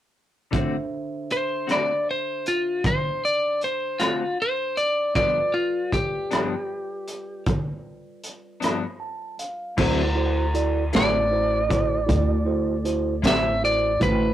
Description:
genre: slow blues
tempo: 52 BPM (dotted quarters)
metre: 12/8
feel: straight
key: D mixolydian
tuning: A4 = 442 Hz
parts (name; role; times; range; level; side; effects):
- clean electric guitar; accompaniment; 0.5-13.5 s; G2 to F#4; -28 LUFS; left 5 dB; tremolo
- mellow tine electric piano; accompaniment; 0.5-14.3 s; D3 to A5; -30 LUFS; right 3 dB; none
- crunchy breakbeat drum kit; drums; 0.5-14.2 s; crash cymbal, hi-hat, kick drum, rim click, snare drum; -25 LUFS; equal; none
- lightly driven lead guitar; melody; 1.3-14.3 s; F4 to E5; -23 LUFS; equal; none
- upright bass; bass; 9.8-14.3 s; A1 to D2; -24 LUFS; equal; none
room: light reverb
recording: rough rehearsal-room recording, warm saturation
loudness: -21 LUFS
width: side -12 dB against mid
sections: 0.5-9.8 A section; 9.8-14.3 B section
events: tine electric piano fill 8.6-9.8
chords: 0.5 D7; 5.2 G7; 9.8 D9

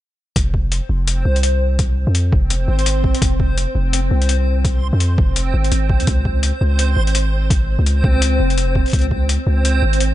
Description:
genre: half-time drum and bass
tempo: 168 BPM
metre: 4/4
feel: swing 59% on 16ths, half-time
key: F minor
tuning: A4 = 440 Hz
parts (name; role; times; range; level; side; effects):
- long sustained 808-style bass; bass; 0.4-10.1 s; F1 to F2; -16 LUFS; equal; none
- electronic hi-hat; drums; 0.4-10.1 s; none; -24 LUFS; left 4 dB; overdrive
- electronic kick drum; drums; 0.4-9.2 s; none; -18 LUFS; equal; overdrive
- backwards swelling texture; texture; 0.8-10.1 s; C4 to C5; -23 LUFS; right 1 dB; built-in reverb
room: little or no reverb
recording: nothing above 10.3 kHz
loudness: -14 LUFS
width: side -14 dB against mid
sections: 0.4-10.1 A section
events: none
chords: 0.4 Fm; 6.1 Db5

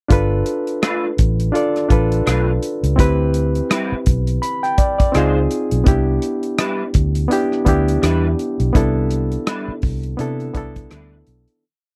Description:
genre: lush 1970s-style soul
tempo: 83 BPM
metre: 4/4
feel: swing 58% on 16ths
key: C major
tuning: A4 = 440 Hz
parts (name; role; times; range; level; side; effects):
- barky reed electric piano; accompaniment; 0.1-11.7 s; B3 to B5; -22 LUFS; equal; overdrive
- vintage muted fingered electric bass; bass; 0.1-11.4 s; G1 to C3; -21 LUFS; equal; none
- warm soul drum kit; drums; 0.1-11.6 s; hi-hat, kick drum, rim click; -19 LUFS; equal; none
- electric guitar through a small old amp; riff; 0.8-11.1 s; G3 to C5; -26 LUFS; equal; ensemble chorus
room: little or no reverb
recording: dry, close 1970s-style studio recording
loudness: -18 LUFS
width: mono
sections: 0.1-11.6 A section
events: fade-out 8.7-11.6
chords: 0.1 G9 (rootless); 3.0 D13sus4; 5.2 Dbmaj9; 5.9 Cmaj9

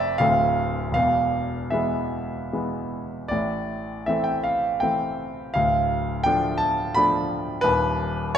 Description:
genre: classical, romantic character piece for solo piano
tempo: 75-88 BPM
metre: 3/4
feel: rubato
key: A minor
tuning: A4 = 440 Hz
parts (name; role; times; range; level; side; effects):
- warm grand piano; solo; 0.0-8.4 s; D1 to B5; -21 LUFS; equal; none
room: wet recital hall reverb, RT60 1.3 s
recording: minimal, uncompressed stereo recording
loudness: -21 LUFS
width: side -9 dB against mid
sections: 0.0-8.4 A section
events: none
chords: 0.2 Dm7; 1.0 E; 3.3 Am; 5.6 Dm; 7.6 B/D#

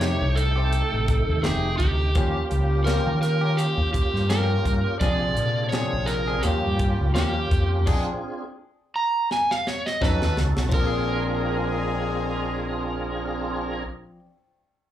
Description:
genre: straight-eighth soul blues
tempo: 84 BPM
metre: 4/4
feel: swing 55% on 16ths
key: Bb mixolydian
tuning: A4 = 440 Hz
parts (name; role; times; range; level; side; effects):
- overdriven slide guitar; melody; 0.0-13.8 s; G4 to Bb5; -27 LUFS; right 1 dB; slapback echo
- tonewheel organ; accompaniment; 0.0-13.8 s; C3 to G5; -31 LUFS; right 4 dB; overdrive, chorus vibrato, slow rotary speaker, slapback echo
- mellow horn section; sustained chords; 0.0-13.8 s; D3 to A4; -34 LUFS; left 1 dB; none
- direct-recorded clean electric guitar; stabs; 0.0-14.4 s; Eb3 to A4; -32 LUFS; left 6 dB; spring reverb, slapback echo
- fingered electric bass; bass; 0.0-13.8 s; F1 to Eb3; -24 LUFS; equal; none
- tight funk drum kit; drums; 0.0-10.9 s; crash cymbal, hi-hat, kick drum, snare drum; -27 LUFS; equal; none
room: little or no reverb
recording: live gig heard through the venue's PA, club reverb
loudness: -21 LUFS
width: side -12 dB against mid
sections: 0.0-10.7 A section; 10.7-13.6 B section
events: stop 7.9-10.0; drum fill 9.3-10.7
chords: 0.0 F9; 2.2 Eb9; 5.0 Bb9; 6.4 Eb9; 7.9 Bb9 (rootless); 10.0 B9; 10.7 Bb9

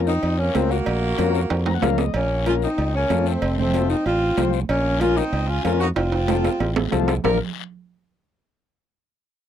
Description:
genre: latin, cumbia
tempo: 188 BPM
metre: 4/4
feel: straight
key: Bb harmonic minor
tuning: A4 = 439 Hz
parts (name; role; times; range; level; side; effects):
- overdriven combo organ; accompaniment; 0.0-7.4 s; C4 to Bb5; -24 LUFS; left 15 dB; none
- modern bright fingered electric bass; bass; 0.0-7.4 s; F1 to F2; -23 LUFS; equal; none
- dark saxophone section; melody; 0.1-7.4 s; F3 to Bb4; -23 LUFS; equal; none
- guiro; percussion; 0.1-7.3 s; none; -38 LUFS; left 18 dB; none
- congas; percussion; 0.2-7.3 s; none; -29 LUFS; right 8 dB; none
- cowbell and timbales; percussion; 0.2-7.3 s; none; -28 LUFS; right 7 dB; none
room: little or no reverb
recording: dry, close 1970s-style studio recording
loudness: -19 LUFS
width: side -10 dB against mid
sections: 0.0-2.1 A section; 2.1-7.2 B section; 7.2-8.5 C section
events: drum fill 1.5-2.1, 6.0-7.2; transistor combo organ fill 1.5-2.1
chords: 0.0 Bbm; 3.4 F; 4.7 Bbm; 6.0 F; 7.2 Bb

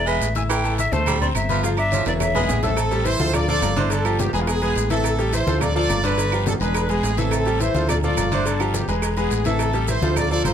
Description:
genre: latin, salsa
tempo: 211 BPM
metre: 4/4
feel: straight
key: A minor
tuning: A4 = 440 Hz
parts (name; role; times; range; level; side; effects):
- bright jazz flute; melody; 0.0-2.6 s; C5 to G#5; -24 LUFS; left 1 dB; none
- bright baby grand piano; accompaniment; 0.0-10.5 s; D3 to E6; -25 LUFS; left 1 dB; none
- fingered electric bass; bass; 0.0-10.5 s; E1 to D2; -23 LUFS; equal; none
- breathy baritone saxophone; second line; 0.1-2.6 s; E3 to G#3; -27 LUFS; right 7 dB; none
- agogo bells and timbales; percussion; 0.1-10.5 s; none; -32 LUFS; right 6 dB; none
- congas; percussion; 0.1-10.5 s; none; -30 LUFS; equal; none
- maracas; percussion; 0.1-10.5 s; none; -36 LUFS; right 6 dB; none
- cowbell and bongos; percussion; 0.2-10.5 s; none; -32 LUFS; left 6 dB; none
- guiro; percussion; 0.2-10.5 s; none; -38 LUFS; left 8 dB; none
- claves; percussion; 0.5-10.5 s; none; -35 LUFS; right 11 dB; none
- mellow horn section; melody; 2.3-10.5 s; B3 to D5; -24 LUFS; right 1 dB; none
room: light reverb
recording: close, detailed microphones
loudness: -18 LUFS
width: side -9 dB against mid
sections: 0.0-2.8 A section; 2.8-10.5 B section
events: drum fill 1.9-2.8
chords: 0.5 A5; 1.1 Dm7; 1.6 G5; 2.2 E; 2.8 Am7; 3.3 Dm; 3.9 G7; 4.5 E; 5.0 Am7; 5.6 Dm; 6.2 G7; 6.7 E7; 7.3 Am7; 7.9 Dm; 8.5 G7; 9.0 E; 9.6 Am7

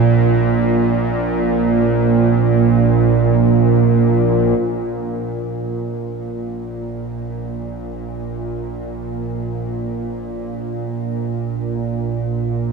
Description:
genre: dark ambient drone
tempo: free time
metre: none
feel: none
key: unclear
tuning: A4 = 441 Hz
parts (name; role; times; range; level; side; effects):
- deep dark ambient pad; sustained chords; 0.0-4.6 s; Bb3 to C5; -28 LUFS; right 1 dB; none
- bowed-like drone; drone; 0.0-12.7 s; Bb1 to Bb2; -16 LUFS; right 3 dB; built-in reverb
room: wet cathedral reverb, RT60 5.4 s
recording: in a vast, echoing space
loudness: -16 LUFS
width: side -4 dB against mid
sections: 0.0-4.6 A section; 4.6-12.7 B section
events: fade-in on synth drone 4.6-12.7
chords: 0.0 Bbsus2; 4.6 N.C.

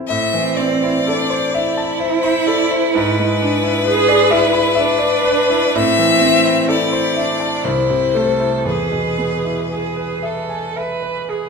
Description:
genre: classical, slow romantic movement for piano trio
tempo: 63 BPM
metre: 3/4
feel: uneven beats, rubato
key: A minor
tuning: A4 = 442 Hz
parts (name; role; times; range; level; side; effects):
- bright concert grand piano; accompaniment; 0.0-11.5 s; C2 to B5; -19 LUFS; equal; none
- rich violin; melody; 0.1-10.7 s; B4 to E5; -18 LUFS; left 6 dB; none
- rich cello; second line; 0.1-11.5 s; C4 to B4; -19 LUFS; right 7 dB; none
room: wet recital hall reverb, RT60 1.7 s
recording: minimal, uncompressed stereo recording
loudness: -14 LUFS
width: side -5 dB against mid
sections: 0.1-11.5 A section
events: none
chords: 0.1 Am; 2.9 E7/G#; 5.8 Am; 7.7 Am/C; 8.7 E

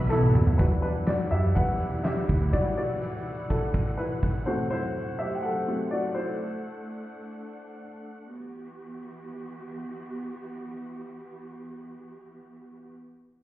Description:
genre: piano-driven pop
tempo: 124 BPM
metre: 4/4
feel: straight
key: E minor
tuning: A4 = 440 Hz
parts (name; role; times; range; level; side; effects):
- clear upright piano; accompaniment; 0.0-7.8 s; F#3 to G5; -29 LUFS; left 1 dB; none
- warm studio string section; sustained chords; 0.0-12.9 s; E3 to B5; -38 LUFS; right 1 dB; none
- fingerpicked steel-string acoustic guitar; riff; 0.0-0.6 s; B2 to F#4; -29 LUFS; right 3 dB; none
- vintage muted fingered electric bass; bass; 0.0-2.5 s; B1 to F#2; -26 LUFS; equal; none
- huge arena drum kit; drums; 0.1-4.5 s; handclaps, hi-hat, kick drum, snare drum, toms; -27 LUFS; equal; none
room: moderate large studio reverb, RT60 1.2 s, small room reverb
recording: heard muffled through a wall, stone room reverb, EQ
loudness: -25 LUFS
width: side -15 dB against mid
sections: 0.6-8.3 A section; 8.3-12.2 B section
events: drum fill 0.1-0.6; upright piano solo 0.6-8.3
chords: 0.0 Bsus4; 0.6 Emadd9; 4.5 F#dim; 8.3 Emadd9

